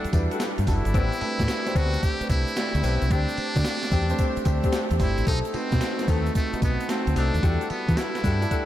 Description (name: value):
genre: R&B, new jack swing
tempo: 111 BPM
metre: 4/4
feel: swing 67% on 16ths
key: E minor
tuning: A4 = 440 Hz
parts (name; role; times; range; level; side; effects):
- trumpet with metal mute; melody; 0.0-8.7 s; A3 to G4; -30 LUFS; equal; analog delay
- warm concert grand piano; accompaniment; 0.0-8.7 s; G3 to D5; -30 LUFS; right 1 dB; none
- mellow horn section; stabs; 0.0-8.7 s; G3 to B4; -33 LUFS; left 6 dB; analog delay
- deep dub fingered electric bass; bass; 0.0-8.4 s; F#1 to E3; -25 LUFS; equal; none
- gated 80s digital drum machine; drums; 0.0-8.7 s; hi-hat, kick drum, snare drum, tambourine; -26 LUFS; equal; gated reverb, gated reverb snare
- tube shaker; percussion; 0.0-8.7 s; none; -49 LUFS; right 9 dB; none
room: light reverb, small room ambience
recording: none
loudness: -22 LUFS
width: side -13 dB against mid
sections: 0.0-8.7 A section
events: none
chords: 0.0 Em11; 0.9 Am11; 3.1 D7sus4; 5.3 B7b9; 7.4 Em11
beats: 0.40 | 0.94 1.48 2.02 2.56 | 3.10 3.65 4.18 4.73 | 5.27 5.81 6.35 6.89 | 7.43 7.97 8.51